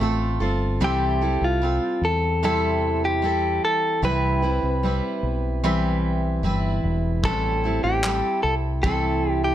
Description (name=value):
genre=acoustic pop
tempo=75 BPM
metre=4/4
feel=straight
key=A minor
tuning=A4 = 441 Hz
part: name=direct-recorded clean electric guitar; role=melody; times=0.0-9.5 s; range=F4 to C5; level=-24 LUFS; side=left 1 dB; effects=plate reverb
part: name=picked steel-string acoustic guitar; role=accompaniment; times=0.0-9.5 s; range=A2 to B4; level=-25 LUFS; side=right 1 dB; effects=none
part: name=fingered electric bass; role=bass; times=0.0-9.5 s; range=E1 to E2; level=-25 LUFS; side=equal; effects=none
part: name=cloth-damped thuddy drum kit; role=drums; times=7.2-9.0 s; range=handclaps, kick drum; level=-26 LUFS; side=equal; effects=none
room=light reverb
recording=none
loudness=-20 LUFS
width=side -12 dB against mid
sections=0.0-9.5 A section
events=none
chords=0.0 Dm7 (rootless); 0.8 Am7/C; 4.0 Cmaj7; 7.2 Am7